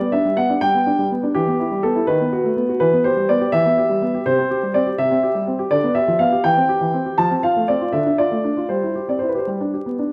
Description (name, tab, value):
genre	classical-period piano sonatina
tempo	82 BPM (dotted quarters)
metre	6/8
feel	rubato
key	C major from 4.3 s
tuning	A4 = 440 Hz
part	warm concert grand piano	solo	0.0-10.1 s	C3 to A5	-19 LUFS	equal	none
room	wet recital hall reverb, RT60 1.4 s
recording	vinyl crackle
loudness	-19 LUFS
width	mono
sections	0.0-10.1 A section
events	none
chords	0.0 G; 1.4 Em; 2.1 B7/D#; 2.8 Em; 4.3 C; 5.7 G7/D; 6.4 C/E; 7.2 F; 7.9 Dm; 8.7 C/G; 9.5 G